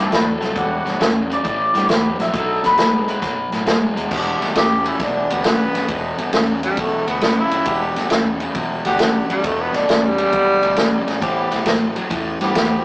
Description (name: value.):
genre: electric blues shuffle.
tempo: 135 BPM.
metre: 4/4.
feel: swing 68% on 8ths.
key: E minor.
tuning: A4 = 441 Hz.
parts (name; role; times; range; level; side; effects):
electric guitar through a small old amp; melody; 0.0-3.5 s; C4 to E5; -19 LUFS; left 1 dB; phaser.
overdriven semi-hollow guitar; riff; 0.0-12.8 s; E2 to G#3; -23 LUFS; equal; none.
vintage muted fingered electric bass; bass; 0.0-12.8 s; E1 to A2; -31 LUFS; equal; none.
vintage drum kit; drums; 0.1-12.7 s; crash cymbal, hi-hat, kick drum, ride cymbal, snare drum; -20 LUFS; equal; none.
warm horn section; stabs; 0.6-12.8 s; G3 to A4; -23 LUFS; equal; none.
growling tenor saxophone; second line; 4.6-11.3 s; G3 to G4; -19 LUFS; equal; tape echo.
room: moderate small room reverb, RT60 0.5 s.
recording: rough rehearsal-room recording, tube saturation, small speaker sound.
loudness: -16 LUFS.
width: side -24 dB against mid.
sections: 0.0-4.1 A section; 4.1-12.8 A section.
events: clean electric guitar solo 0.0-4.1; tenor saxophone solo 4.1-12.8.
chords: 0.0 Am9; 0.6 Em9; 1.4 Am9; 2.3 B7#9; 4.1 Em9; 11.2 Am9.